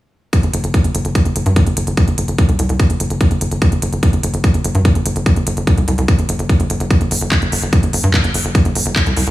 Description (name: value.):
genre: psychedelic trance.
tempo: 146 BPM.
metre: 4/4.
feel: straight.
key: unclear.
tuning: A4 = 440 Hz.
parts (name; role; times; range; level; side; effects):
electronic kick drum; drums; 0.3-9.0 s; none; -13 LUFS; equal; studio reverb.
techno drum kit; drums; 0.3-9.3 s; handclaps, hi-hat; -22 LUFS; equal; studio reverb.
tight sequencer bass; bass; 0.4-9.3 s; G1 to G2; -17 LUFS; equal; none.
room: digital ambience.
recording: small room ambience.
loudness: -13 LUFS.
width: side -16 dB against mid.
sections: 0.3-9.3 A section.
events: none.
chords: none.